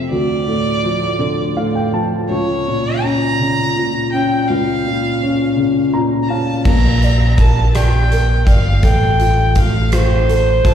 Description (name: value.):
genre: six-eight pop ballad.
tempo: 55 BPM (dotted quarters).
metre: 6/8.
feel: straight.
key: unclear.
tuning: A4 = 440 Hz.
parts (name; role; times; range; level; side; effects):
dark upright piano; accompaniment; 0.0-10.7 s; Db2 to Bb5; -17 LUFS; left 1 dB; slapback echo.
clear violin; melody; 0.1-10.7 s; C5 to Bb5; -20 LUFS; right 1 dB; slapback echo.
fingered electric bass; bass; 6.7-10.7 s; G1 to Bb1; -14 LUFS; equal; none.
huge arena drum kit; drums; 6.7-10.7 s; crash cymbal, hi-hat, kick drum, rim click; -16 LUFS; equal; none.
room: small room ambience.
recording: live gig heard through the venue's PA, recital hall reverb.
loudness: -13 LUFS.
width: side -9 dB against mid.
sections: 0.0-6.7 A section; 6.7-10.7 B section.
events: upright piano fill 1.2-2.3, 5.6-6.7.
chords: 0.1 Dm; 2.3 Bbm/Db; 6.7 Bb; 8.8 F/A.